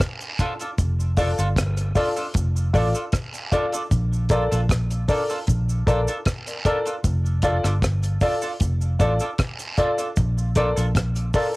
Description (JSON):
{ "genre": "roots reggae", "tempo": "77 BPM", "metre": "4/4", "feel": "straight", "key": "F major", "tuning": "A4 = 440 Hz", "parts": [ { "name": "deep reggae drum kit", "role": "drums", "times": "0.0-11.5 s", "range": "hi-hat, kick drum, rim click", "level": "-24 LUFS", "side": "equal", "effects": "none" }, { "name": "cabasa and guiro", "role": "percussion", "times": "0.0-11.5 s", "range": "none", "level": "-36 LUFS", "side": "right 3 dB", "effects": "none" }, { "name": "clean electric guitar", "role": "accompaniment", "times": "0.4-11.5 s", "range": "D4 to A4", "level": "-30 LUFS", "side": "right 2 dB", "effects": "wide subtle chorus, tape echo" }, { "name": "vintage muted fingered electric bass", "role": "bass", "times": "0.8-11.3 s", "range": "F1 to Bb1", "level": "-22 LUFS", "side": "equal", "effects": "none" }, { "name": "dark upright piano", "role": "stabs", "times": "1.2-11.6 s", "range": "F4 to D5", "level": "-23 LUFS", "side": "left 1 dB", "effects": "none" } ], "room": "small room ambience", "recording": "home recording on cassette", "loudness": "-20 LUFS", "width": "side -22 dB against mid", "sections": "0.0-11.6 A section", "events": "none", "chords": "0.0 Bbmaj7 (rootless); 0.8 F6; 3.9 Bbmaj7; 7.0 F6; 10.2 Bbmaj7", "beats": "0.00 | 0.79 1.57 2.35 3.13 | 3.91 4.70 5.48 6.26 | 7.04 7.82 8.61 9.39 | 10.17 10.95" }